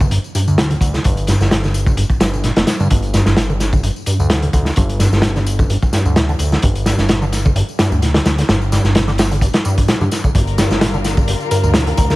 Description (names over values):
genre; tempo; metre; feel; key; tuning
breakbeat, breaks; 129 BPM; 4/4; swing 54% on 16ths; G minor; A4 = 439 Hz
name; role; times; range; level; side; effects
deep acid bass; riff; 0.0-12.2 s; F2 to Bb3; -19 LUFS; equal; cassette tape, digital delay
fat analog bass; bass; 0.0-12.2 s; F1 to G2; -18 LUFS; equal; none
crunchy breakbeat drum kit; drums; 0.0-12.2 s; hi-hat, kick drum, snare drum; -16 LUFS; equal; none
tambourine; drums; 0.0-12.2 s; none; -31 LUFS; left 4 dB; none
warm studio string section; sustained chords; 10.4-12.2 s; D3 to Bb4; -23 LUFS; left 3 dB; sidechain pumping
soft struck synth lead; melody; 11.5-12.2 s; Bb4; -21 LUFS; left 1 dB; chorus, phaser, telephone sound, digital delay
room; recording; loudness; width
small room ambience; vinyl crackle; -13 LUFS; side -19 dB against mid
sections
0.0-12.2 A section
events
filter sweep on acid bass 0.0-12.2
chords
0.0 Gm7